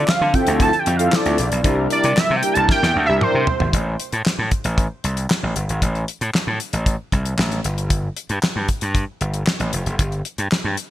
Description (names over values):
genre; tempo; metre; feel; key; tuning
early-eighties boogie funk; 115 BPM; 4/4; straight; unclear; A4 = 440 Hz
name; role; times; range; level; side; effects
fat analog lead; melody; 0.0-3.7 s; C5 to A5; -20 LUFS; right 2 dB; chorus
chorused pulse-width pad; sustained chords; 0.0-3.7 s; C3 to E5; -31 LUFS; right 2 dB; none
gritty slap bass; bass; 0.0-10.8 s; F1 to D3; -21 LUFS; equal; overdrive
damped 70s drum kit; drums; 0.1-10.9 s; handclaps, hi-hat, kick drum, snare drum, toms; -21 LUFS; equal; gated reverb
mellow synth brass; accompaniment; 0.3-3.5 s; C4 to Bb4; -23 LUFS; left 1 dB; chorus
room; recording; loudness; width
light reverb, small room ambience; bright 1980s-style digital production; -17 LUFS; side -13 dB against mid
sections
0.0-3.7 A section; 3.7-10.9 B section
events
analog synth lead solo 0.0-3.7; drum fill 2.7-3.7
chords
0.0 Dm9; 1.6 C7; 3.7 N.C.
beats
0.08 0.60 1.12 | 1.64 2.17 2.69 3.21 | 3.73 4.25 4.77 5.30 | 5.82 6.34 6.86 7.38 | 7.90 8.43 8.95 9.47 | 9.99 10.51